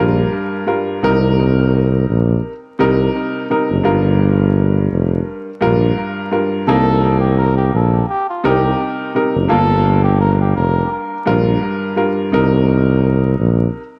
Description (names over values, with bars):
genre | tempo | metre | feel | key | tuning
hip hop, boom-bap hip-hop | 85 BPM | 4/4 | swing 54% on 16ths | C dorian | A4 = 440 Hz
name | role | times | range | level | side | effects
dark grand piano | accompaniment | 0.0-13.8 s | G2 to Bb4 | -20 LUFS | equal | high-pass filter, low-pass filter, tape echo
breathy tuba | bass | 0.0-13.7 s | F1 to C2 | -16 LUFS | equal | none
trumpet with cup mute | melody | 6.7-11.1 s | F4 to Bb4 | -23 LUFS | equal | high-pass filter, low-pass filter, tape echo
room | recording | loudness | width
light reverb, small room ambience | echo-heavy mix, vinyl crackle, lossy compression artefacts | -15 LUFS | mono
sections
0.0-14.0 A section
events
none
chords
0.0 Gm7; 1.0 Cm7; 3.9 Gm7; 6.7 Cm7; 9.5 Gm7; 12.3 Cm7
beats
0.33 | 1.03 1.74 2.44 3.15 | 3.85 4.56 5.27 5.97 | 6.68 7.38 8.09 8.79 | 9.50 10.21 10.91 11.62 | 12.32 13.03 13.74